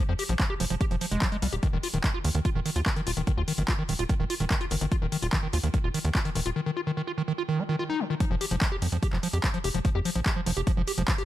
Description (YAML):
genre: psychedelic trance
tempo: 146 BPM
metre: 4/4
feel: straight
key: unclear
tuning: A4 = 440 Hz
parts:
  - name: overdriven acid bass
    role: riff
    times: 0.0-11.2 s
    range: Eb3 to G4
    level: -30 LUFS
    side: moving between left 5 dB and right 5 dB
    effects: auto-pan, sidechain pumping, digital delay
  - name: tight sequencer bass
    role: bass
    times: 0.1-11.0 s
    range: Eb1 to F2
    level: -28 LUFS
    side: equal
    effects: none
  - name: techno drum kit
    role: drums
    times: 0.2-11.2 s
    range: handclaps, hi-hat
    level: -32 LUFS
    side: equal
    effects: overdrive
  - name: electronic kick drum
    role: drums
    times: 0.4-11.2 s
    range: none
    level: -27 LUFS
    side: equal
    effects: overdrive
room: little or no reverb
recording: lossy compression artefacts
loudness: -25 LUFS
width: side -14 dB against mid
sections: 0.0-8.2 A section; 8.2-11.2 B section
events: drop 8.2-11.2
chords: 0.0 F5; 1.6 Eb5; 8.2 F5